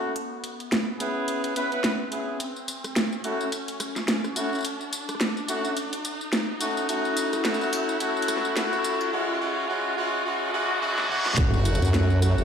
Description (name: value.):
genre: glitch hop.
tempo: 107 BPM.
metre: 4/4.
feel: swing 58% on 16ths.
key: unclear.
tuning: A4 = 441 Hz.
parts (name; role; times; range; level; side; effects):
clear horn section; stabs; 0.0-12.4 s; G#3 to B4; -27 LUFS; equal; sidechain pumping, low-pass filter, digital delay.
riser, reverse cymbal and sub drop; sound effects; 0.0-12.4 s; none; -30 LUFS; equal; none.
drum and bass drum kit; drums; 0.2-12.4 s; hi-hat, rim click, snare drum, tambourine, toms; -28 LUFS; equal; overdrive.
formant-sweep wobble bass; bass; 11.4-12.4 s; F#1 to F#2; -21 LUFS; equal; chorus.
electronic kick drum; drums; 11.4-11.5 s; none; -22 LUFS; equal; overdrive.
room: wet studio reverb, RT60 0.6 s.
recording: played on a big sound system in a bare room, large studio reverb, high-pass filter.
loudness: -24 LUFS.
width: side -7 dB against mid.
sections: 0.0-11.4 A section; 11.4-12.4 B section.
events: build-up 0.0-11.4; riser 0.0-11.4; reverse cymbal 10.3-11.4; drum fill 11.0-11.4; drop 11.4-12.4; impact 11.4-12.4.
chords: 0.2 C#m7; 2.4 A6; 9.1 C#m; 11.4 F#m7.